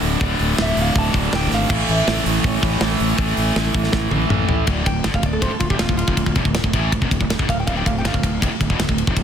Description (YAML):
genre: heavy metal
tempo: 160 BPM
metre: 4/4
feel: straight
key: D harmonic minor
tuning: A4 = 440 Hz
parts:
  - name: metal-body resonator slide guitar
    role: melody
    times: 0.0-8.8 s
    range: F4 to A5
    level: -26 LUFS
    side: right 1 dB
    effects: ping-pong delay
  - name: biting overdriven guitar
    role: riff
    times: 0.0-4.7 s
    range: D2 to A3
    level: -25 LUFS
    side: equal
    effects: none
  - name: sludgy distorted guitar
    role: riff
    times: 0.0-9.2 s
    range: D2 to A3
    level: -26 LUFS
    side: left 12 dB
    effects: overdrive
  - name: tight distorted guitar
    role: riff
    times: 0.0-9.2 s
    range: D2 to A3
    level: -25 LUFS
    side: right 14 dB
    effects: distortion
  - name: fuzz fingered electric bass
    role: bass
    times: 0.0-9.2 s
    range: D1 to A1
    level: -23 LUFS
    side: equal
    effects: overdrive
  - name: tight metal drum kit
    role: drums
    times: 0.0-9.2 s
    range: crash cymbal, hi-hat, kick drum, ride cymbal, snare drum, toms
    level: -21 LUFS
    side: equal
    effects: soft clipping on kick
room: little or no reverb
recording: dense, heavily limited modern master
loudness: -16 LUFS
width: side -8 dB against mid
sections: 0.0-4.7 A section; 4.7-9.2 B section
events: drum fill 3.9-4.7; resonator guitar played with a steel bar solo 4.7-9.2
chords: 0.0 D5; 1.7 A; 4.7 Dm